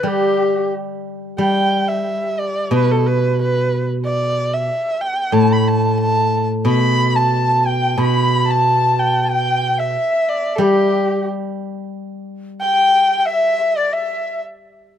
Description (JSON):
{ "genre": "chinese traditional, Chinese chamber ensemble", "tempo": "91 BPM", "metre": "2/4", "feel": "rubato", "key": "G gong mode", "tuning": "A4 = 441 Hz", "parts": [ { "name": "dark erhu", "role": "melody", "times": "0.0-14.4 s", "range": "G4 to B5", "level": "-19 LUFS", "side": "right 1 dB", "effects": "none" }, { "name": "bright reedy large dizi", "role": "second line", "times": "0.0-0.7, 6.7-14.4 s", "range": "G4 to B5", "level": "-18 LUFS", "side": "left 3 dB", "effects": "none" }, { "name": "steel-string zither", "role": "accompaniment", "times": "0.0-12.6 s", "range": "A2 to G3", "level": "-18 LUFS", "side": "equal", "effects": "none" } ], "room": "moderate spring reverb, RT60 1.8 s", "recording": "none", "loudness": "-15 LUFS", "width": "side -9 dB against mid", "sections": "0.0-1.4 A section; 1.4-11.9 B section; 11.9-15.0 C section", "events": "none", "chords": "none" }